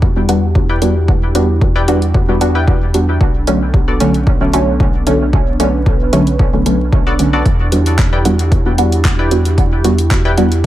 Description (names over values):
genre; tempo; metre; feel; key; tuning
dub techno; 113 BPM; 4/4; straight; E dorian; A4 = 440 Hz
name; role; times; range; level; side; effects
dark analog pad; sustained chords; 0.0-10.7 s; B3 to B4; -21 LUFS; right 2 dB; chorus, sidechain pumping
warm sub bass; bass; 0.0-10.7 s; B1 to E2; -17 LUFS; equal; tube saturation, sidechain pumping
electronic kick drum; drums; 0.0-10.2 s; none; -14 LUFS; equal; none
filtered dub chord stab; stabs; 0.2-10.5 s; D3 to F#4; -16 LUFS; equal; chorus, phaser, sidechain pumping, dub echo
deep house drum kit; drums; 0.3-10.6 s; handclaps, hi-hat; -23 LUFS; equal; none
wavetable chord stab; riff; 0.7-10.3 s; B3 to G5; -22 LUFS; left 3 dB; sidechain pumping, dub echo
room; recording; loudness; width
light reverb; echo-heavy mix, vinyl crackle; -11 LUFS; side -14 dB against mid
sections
0.0-10.7 A section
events
filter sweep on synth stab 0.0-10.7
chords
0.0 Em7; 3.2 Bm7; 7.5 Em7